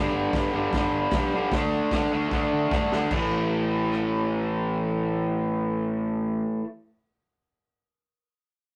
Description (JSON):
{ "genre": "garage rock duo or trio", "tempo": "150 BPM", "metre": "4/4", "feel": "straight", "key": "unclear", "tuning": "A4 = 442 Hz", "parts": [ { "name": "raw garage guitar", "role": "riff", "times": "0.0-6.6 s", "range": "G2 to D4", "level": "-27 LUFS", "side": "equal", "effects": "overdrive" }, { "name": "fuzz fingered electric bass", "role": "bass", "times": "0.0-6.4 s", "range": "G1 to D3", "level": "-36 LUFS", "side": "equal", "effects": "overdrive" }, { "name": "raw garage drum kit", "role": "drums", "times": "0.3-4.0 s", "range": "crash cymbal, hi-hat, kick drum, rim click, snare drum", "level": "-32 LUFS", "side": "equal", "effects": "none" } ], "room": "light reverb", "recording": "rough rehearsal-room recording, tube saturation", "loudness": "-26 LUFS", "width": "mono", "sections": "0.0-3.1 A section; 3.1-6.3 B section", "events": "drum fill 2.3-3.1", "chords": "0.0 G; 1.5 D5; 3.1 A5" }